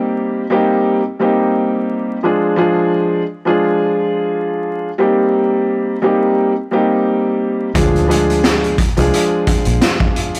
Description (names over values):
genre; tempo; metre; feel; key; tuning
hip hop, boom-bap hip-hop; 87 BPM; 4/4; swing 56% on 16ths; C minor; A4 = 440 Hz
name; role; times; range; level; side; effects
dark upright piano; accompaniment; 0.0-10.4 s; F3 to Ab4; -16 LUFS; equal; high-pass filter, low-pass filter
raw garage drum kit; drums; 7.7-10.4 s; hi-hat, kick drum, snare drum; -18 LUFS; equal; none
deep dub fingered electric bass; bass; 7.8-9.8 s; Bb1 to D2; -21 LUFS; equal; none
room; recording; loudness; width
little or no reverb; dry, gritty hardware recording, transformer saturation, vinyl crackle; -16 LUFS; mono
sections
0.0-10.4 A section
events
none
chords
0.0 Cm7; 2.2 Ddim; 5.0 Cm7; 7.7 Ddim